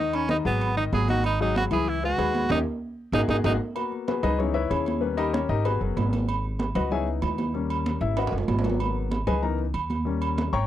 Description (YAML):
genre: latin, salsa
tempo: 190 BPM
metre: 4/4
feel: straight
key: G# minor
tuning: A4 = 440 Hz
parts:
  - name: bright tenor saxophone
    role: melody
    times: 0.0-3.5 s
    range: B3 to G#4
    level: -26 LUFS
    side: right 2 dB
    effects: none
  - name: warm baby grand piano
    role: accompaniment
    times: 0.0-10.7 s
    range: D#3 to C#6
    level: -28 LUFS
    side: left 7 dB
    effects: none
  - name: upright bass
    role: bass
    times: 0.0-10.7 s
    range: F#1 to D#2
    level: -28 LUFS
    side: right 1 dB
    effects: none
  - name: agogo bells and timbales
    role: percussion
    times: 0.1-10.5 s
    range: none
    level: -32 LUFS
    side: right 7 dB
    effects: none
  - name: congas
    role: percussion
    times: 0.1-10.5 s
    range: none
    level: -31 LUFS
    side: right 2 dB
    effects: none
room: light reverb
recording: dry, close 1970s-style studio recording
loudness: -23 LUFS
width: side -12 dB against mid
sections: 0.0-3.8 A section; 3.8-10.7 B section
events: drum fill 2.5-3.8, 8.2-8.8; band accent 2.5-3.8; grand piano solo 3.8-10.7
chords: 0.0 G#m7; 0.6 G#5; 1.9 C#m7; 2.5 D#7; 3.1 G#5; 3.8 G#m7; 4.4 C#m7; 5.0 D#7; 5.7 G#m7; 6.9 C#m7; 7.5 D#7; 8.2 G#m7; 9.4 C#m7; 10.1 D#7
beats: 0.29 0.61 0.93 | 1.24 1.56 1.87 2.19 | 2.50 2.82 3.13 3.45 | 3.76 4.08 4.39 4.71 | 5.03 5.34 5.66 5.97 | 6.29 6.60 6.91 7.23 | 7.54 7.86 8.17 8.49 | 8.80 9.12 9.43 9.75 | 10.06 10.38